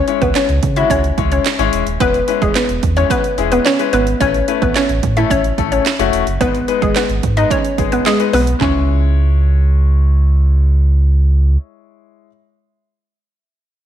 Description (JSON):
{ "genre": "dance-pop", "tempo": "109 BPM", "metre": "4/4", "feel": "straight", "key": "C# minor", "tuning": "A4 = 440 Hz", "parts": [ { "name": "hollow square pluck", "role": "melody", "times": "0.0-10.2 s", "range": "G#3 to E5", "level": "-16 LUFS", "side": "equal", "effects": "chorus, sidechain pumping, slapback echo" }, { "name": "bright concert grand piano", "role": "accompaniment", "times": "0.1-12.3 s", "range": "G#3 to C#5", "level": "-20 LUFS", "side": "left 12 dB", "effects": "sidechain pumping" }, { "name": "house drum kit", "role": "drums", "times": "0.1-8.7 s", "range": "handclaps, hi-hat, kick drum, snare drum, toms", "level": "-20 LUFS", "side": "right 4 dB", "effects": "none" }, { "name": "sub bass with octave", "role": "bass", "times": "0.2-11.6 s", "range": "D#1 to C#3", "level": "-14 LUFS", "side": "right 1 dB", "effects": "sidechain pumping" } ], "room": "light reverb", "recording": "1960s-style stereo", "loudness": "-12 LUFS", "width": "side -10 dB against mid", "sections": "0.0-8.6 A section; 8.6-10.8 B section", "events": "drop 0.0-8.6", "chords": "0.0 C#m; 2.0 E6; 4.2 Aadd9; 6.4 G#m; 8.6 C#m", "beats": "0.35 0.90 1.45 | 2.00 2.55 3.10 3.65 | 4.21 4.76 5.31 5.86 | 6.41 6.96 7.51 8.06 | 8.61 9.16 9.71 10.26" }